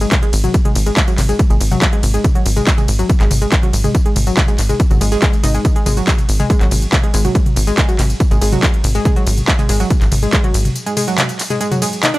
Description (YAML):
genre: driving peak-time techno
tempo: 141 BPM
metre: 4/4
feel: straight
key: unclear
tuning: A4 = 440 Hz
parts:
  - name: analog pluck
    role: riff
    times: 0.0-12.2 s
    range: F#3 to D#4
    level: -20 LUFS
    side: equal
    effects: chorus, overdrive, sidechain pumping, analog delay
  - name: tight sequencer bass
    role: bass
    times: 0.0-10.7 s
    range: G#1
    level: -16 LUFS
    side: equal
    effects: sidechain pumping
  - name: techno drum kit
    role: drums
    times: 0.0-12.2 s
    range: handclaps, hi-hat, ride cymbal, tambourine, toms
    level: -19 LUFS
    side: equal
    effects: overdrive, sidechain pumping on hats, small room ambience, sidechain pumping on toms, sidechain pumping on perc, sidechain pumping on cymbals
  - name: electronic kick drum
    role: drums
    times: 0.1-10.4 s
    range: none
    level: -14 LUFS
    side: equal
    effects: overdrive, small room ambience
room: digital ambience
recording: dry, gritty hardware recording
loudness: -12 LUFS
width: side -18 dB against mid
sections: 0.0-12.2 A section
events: break 10.8-12.2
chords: 0.0 G#5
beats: 0.12 | 0.54 0.97 1.39 1.82 | 2.24 2.67 3.10 3.52 | 3.95 4.37 4.80 5.22 | 5.65 6.07 6.50 6.92 | 7.35 7.78 8.20 8.63 | 9.05 9.48 9.90 10.33 | 10.76 11.18 11.61 12.03